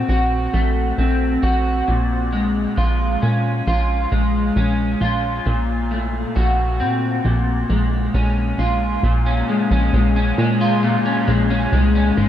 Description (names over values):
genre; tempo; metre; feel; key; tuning
dream pop; 67 BPM; 4/4; straight; Bb minor; A4 = 440 Hz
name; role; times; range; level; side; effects
electric guitar at the edge of break-up; arpeggios; 0.0-12.3 s; Bb2 to Gb4; -19 LUFS; left 1 dB; analog chorus, dub echo, shimmer reverb
plucky analog bass; bass; 0.0-12.3 s; Ab1 to Bb2; -19 LUFS; equal; none
room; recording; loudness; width
moderate plate reverb, RT60 3.0 s; echo-heavy mix; -16 LUFS; side -11 dB against mid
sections
0.0-9.0 A section; 9.0-12.3 B section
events
none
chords
0.0 Bbsus2; 1.9 Bbm7; 9.0 Bbm9